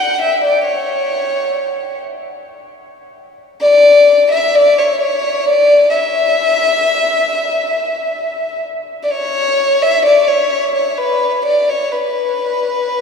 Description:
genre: klezmer.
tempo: 66 BPM.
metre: 3/4.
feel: straight.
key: unclear.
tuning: A4 = 440 Hz.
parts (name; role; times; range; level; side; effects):
dark violin; solo; 0.0-13.0 s; B4 to F#5; -12 LUFS; left 2 dB; slapback echo.
room: wet cathedral reverb, RT60 6.6 s.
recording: in a vast, echoing space, small room reverb.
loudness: -11 LUFS.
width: side -6 dB against mid.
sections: 0.0-9.1 A section; 9.1-13.0 A section.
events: none.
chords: none.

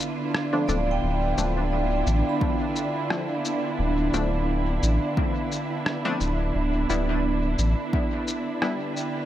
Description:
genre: ambient dub.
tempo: 87 BPM.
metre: 4/4.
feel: swing 54% on 16ths.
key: D dorian.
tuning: A4 = 440 Hz.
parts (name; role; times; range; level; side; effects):
dark studio string section; sustained chords; 0.0-9.3 s; D3 to B4; -28 LUFS; right 1 dB; none.
vibraphone with medium hard mallets; arpeggios; 0.0-9.3 s; B3 to B5; -32 LUFS; right 3 dB; dub echo.
electronic shaker and rim click; drums; 0.0-9.1 s; none; -30 LUFS; left 1 dB; dub echo.
wind-like tuned noise texture; texture; 0.0-9.3 s; B3 to B5; -33 LUFS; equal; built-in reverb.
filtered dub chord stab; stabs; 0.5-8.8 s; F3 to E4; -32 LUFS; left 2 dB; chorus, vintage 12-bit sampler grit, dub echo.
soft dub sub bass; bass; 0.7-7.7 s; D1 to A1; -25 LUFS; equal; tube saturation.
electronic kick drum; drums; 2.4-8.1 s; none; -26 LUFS; equal; overdrive.
room: light reverb.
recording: none.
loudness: -23 LUFS.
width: side -12 dB against mid.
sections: 0.0-9.3 A section.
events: none.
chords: 0.0 Dm7; 6.5 Em7/D.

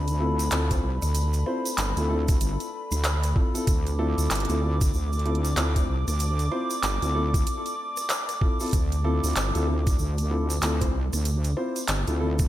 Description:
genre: glitch hop.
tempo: 95 BPM.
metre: 4/4.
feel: swing 61% on 16ths.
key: D dorian.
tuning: A4 = 440 Hz.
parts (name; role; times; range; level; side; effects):
dark analog pad; sustained chords; 0.0-12.5 s; A4 to D6; -33 LUFS; equal; chorus, vintage 12-bit sampler grit, sidechain pumping.
wobble bass; bass; 0.0-12.5 s; G1 to D2; -25 LUFS; equal; chorus, tube saturation.
drum and bass drum kit; drums; 0.1-12.5 s; handclaps, hi-hat, rim click; -31 LUFS; right 1 dB; overdrive, studio reverb, gated reverb.
egg shaker; percussion; 0.1-12.5 s; none; -36 LUFS; right 3 dB; none.
dark baby grand piano; stabs; 0.2-12.5 s; C4 to C5; -30 LUFS; left 2 dB; sidechain pumping, ping-pong delay.
electronic kick drum; drums; 0.7-12.5 s; none; -24 LUFS; equal; studio reverb.
room: light reverb, digital ambience.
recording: bright 1980s-style digital production.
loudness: -23 LUFS.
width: side -14 dB against mid.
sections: 0.0-12.5 A section.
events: none.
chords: 0.0 Dm7.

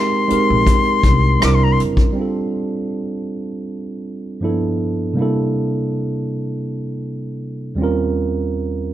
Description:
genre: R&B, neo-soul.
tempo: 80 BPM.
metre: 4/4.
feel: swing 54% on 16ths.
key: F major.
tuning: A4 = 440 Hz.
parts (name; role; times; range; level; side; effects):
silver concert flute; melody; 0.0-1.8 s; Bb5 to D6; -19 LUFS; left 6 dB; none.
tine electric piano; accompaniment; 0.0-8.9 s; Eb2 to Bb4; -19 LUFS; right 2 dB; none.
upright bass; bass; 0.3-2.0 s; Gb1 to C2; -17 LUFS; equal; none.
vintage brush drum kit; drums; 0.3-2.1 s; hi-hat, kick drum, rim click; -17 LUFS; left 1 dB; none.
room: small room ambience.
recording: none.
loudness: -16 LUFS.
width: side -12 dB against mid.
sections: 0.0-2.2 A section; 2.2-8.9 B section.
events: none.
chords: 0.0 Abmaj7; 1.4 C9; 2.2 F69; 4.4 G13; 5.2 C13; 7.8 Eb13.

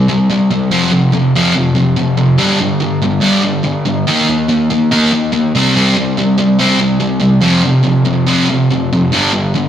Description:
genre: rock.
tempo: 143 BPM.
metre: 4/4.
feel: straight.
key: G minor.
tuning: A4 = 440 Hz.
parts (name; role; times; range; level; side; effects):
sludgy distorted guitar; solo; 0.0-9.7 s; F2 to Eb4; -10 LUFS; equal; overdrive, slapback echo.
room: wet stone room reverb, RT60 1.3 s.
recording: rough rehearsal-room recording, tube saturation.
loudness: -10 LUFS.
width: side -10 dB against mid.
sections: 0.0-2.4 A section; 2.4-9.7 B section.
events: none.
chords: 0.0 C5; 0.7 F5; 2.4 G5; 4.1 Eb5; 5.5 C5; 7.4 F5; 9.1 G5.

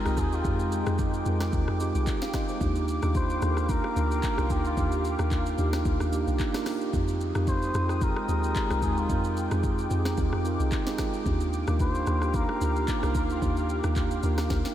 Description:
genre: amapiano.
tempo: 111 BPM.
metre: 4/4.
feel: swing 55% on 16ths.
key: F dorian.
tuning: A4 = 439 Hz.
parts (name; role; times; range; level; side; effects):
trumpet with cup mute; melody; 0.0-13.8 s; F4 to C5; -35 LUFS; left 2 dB; diffuse ambient delay.
mellow tine electric piano; accompaniment; 0.0-14.7 s; Ab3 to G5; -30 LUFS; right 4 dB; none.
lush unison pad; sustained chords; 0.0-14.7 s; Ab3 to Eb6; -35 LUFS; left 2 dB; chorus.
deep log drum bass; bass; 0.1-14.6 s; C2 to F2; -28 LUFS; left 1 dB; none.
afro-pop drum kit; drums; 0.1-14.7 s; handclaps, hi-hat, kick drum, rim click, shaker, snare drum; -31 LUFS; left 1 dB; none.
room: moderate huge ambient reverb, RT60 8.3 s.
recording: dreamy mix soaked in reverb.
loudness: -24 LUFS.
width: side -11 dB against mid.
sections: 0.0-14.7 A section.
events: drum fill 14.5.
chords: 0.0 Fm9; 2.6 Ebmaj9; 6.9 Fm9; 11.3 Ebmaj9.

